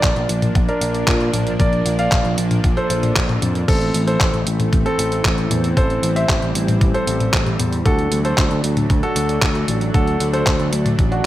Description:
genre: italo disco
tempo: 115 BPM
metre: 4/4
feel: straight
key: A minor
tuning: A4 = 440 Hz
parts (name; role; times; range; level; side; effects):
- clear concert grand piano; melody; 0.0-11.3 s; C4 to F5; -23 LUFS; equal; tape echo
- lush unison pad; sustained chords; 0.0-11.3 s; E3 to D4; -24 LUFS; equal; chorus
- picked electric bass; bass; 0.0-11.2 s; A1 to Bb2; -21 LUFS; equal; tube saturation
- detuned 8-bit digital drum machine; drums; 0.0-11.2 s; crash cymbal, handclaps, hi-hat, toms; -22 LUFS; left 1 dB; studio reverb, gated reverb
- electronic kick drum; drums; 0.0-11.1 s; none; -18 LUFS; equal; studio reverb
room: light reverb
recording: none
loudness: -15 LUFS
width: side -14 dB against mid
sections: 0.0-3.7 A section; 3.7-11.3 B section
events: none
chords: 0.0 Bb; 3.7 Am; 7.9 D

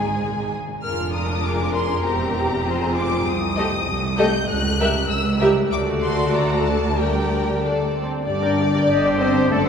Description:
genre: quick classical-period movement for symphony orchestra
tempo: 98 BPM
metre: 2/4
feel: straight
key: G minor from 3.3 s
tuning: A4 = 438 Hz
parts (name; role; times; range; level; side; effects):
- warm studio violin section; melody; 0.0-9.7 s; A4 to G6; -26 LUFS; left 3 dB; none
- warm studio violin section; second line; 0.0-9.7 s; G4 to E5; -24 LUFS; left 3 dB; none
- warm studio viola section; accompaniment; 0.0-9.7 s; G3 to G5; -25 LUFS; right 2 dB; none
- clear studio cello section; bass; 0.0-9.7 s; C2 to Ab2; -26 LUFS; right 2 dB; none
- rich studio double bass section; bass; 0.0-9.7 s; E1 to D2; -27 LUFS; right 2 dB; none
- mellow French horn section; sustained chords; 8.3-9.6 s; A3 to D4; -20 LUFS; left 2 dB; none
- clear oboe; second line; 8.9-9.7 s; G4 to A4; -25 LUFS; left 1 dB; none
room: wet cathedral reverb, RT60 5.1 s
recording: recorded in a church or concert hall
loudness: -18 LUFS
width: side -7 dB against mid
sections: 0.0-8.3 A section; 8.3-9.7 B section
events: none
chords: 0.0 N.C.; 0.8 Fm; 2.1 C7/E; 2.7 Fm; 3.3 Am7b5/C; 4.5 C#dim7; 5.7 D; 7.0 Gm/D; 7.6 D5; 8.3 Gm; 8.9 Am7b5/G

